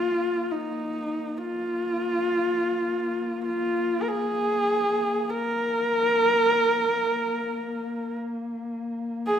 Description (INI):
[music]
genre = mongolian traditional, Mongolian folk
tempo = free time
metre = none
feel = none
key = unclear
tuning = A4 = 439 Hz
[part]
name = dark horsehead fiddle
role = melody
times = 0.0-9.4 s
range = Eb4 to Bb4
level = -23 LUFS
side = equal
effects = none
[part]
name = dark horsehead fiddle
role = drone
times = 0.0-9.4 s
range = Bb3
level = -33 LUFS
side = left 2 dB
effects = none
[sound]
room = wet recital hall reverb, RT60 1.4 s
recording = minimal, uncompressed stereo recording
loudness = -23 LUFS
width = side -8 dB against mid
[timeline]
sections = 0.0-9.4 A section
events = none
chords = none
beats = free time